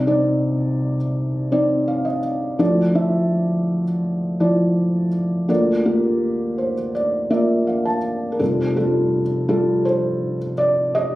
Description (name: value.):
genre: acoustic folk-pop ballad.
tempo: 83 BPM.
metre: 4/4.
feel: straight.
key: F major.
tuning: A4 = 440 Hz.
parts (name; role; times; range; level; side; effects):
felt-muted upright piano; solo; 0.0-11.2 s; F1 to A5; -17 LUFS; equal; none.
room: moderate large studio reverb, RT60 1.3 s.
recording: recorded on a phone in the room, club reverb.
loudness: -18 LUFS.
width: side -17 dB against mid.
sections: 0.0-8.4 A section; 8.4-11.2 B section.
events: felt piano fill 1.5-2.6, 6.2-8.4.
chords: 0.0 Cmadd9; 2.6 Dmadd9; 5.5 Bb/D; 8.4 Fadd9.